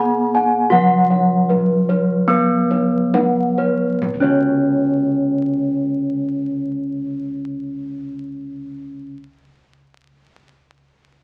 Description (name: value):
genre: Javanese gamelan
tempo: 33-41 BPM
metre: 4/4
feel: straight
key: unclear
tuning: A4 = 440 Hz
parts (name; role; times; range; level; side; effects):
- gamelan-type bronze metallophone; melody; 0.0-9.1 s; B3-40c to G#4+20c; -23 LUFS; equal; none
- gamelan-type bronze metallophone; accompaniment; 0.0-9.2 s; C#3 to B3-40c; -24 LUFS; equal; none
- gamelan-type bossed gongs; arpeggios; 0.0-9.2 s; B4-40c to G#5+20c; -26 LUFS; equal; none
- gamelan-type bronze metallophone; arpeggios; 0.0-9.2 s; B4-40c to B5-40c; -24 LUFS; equal; none
- gamelan-type bossed gongs; bass; 0.0-9.1 s; C#2 to B4-40c; -39 LUFS; equal; none
- kendang; percussion; 0.4-4.9 s; none; -29 LUFS; equal; none
room: wet studio reverb, RT60 0.6 s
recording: very old 78 rpm record, vinyl crackle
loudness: -18 LUFS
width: mono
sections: 0.0-4.0 A section; 4.0-11.2 B section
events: slowing down 0.0-4.0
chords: none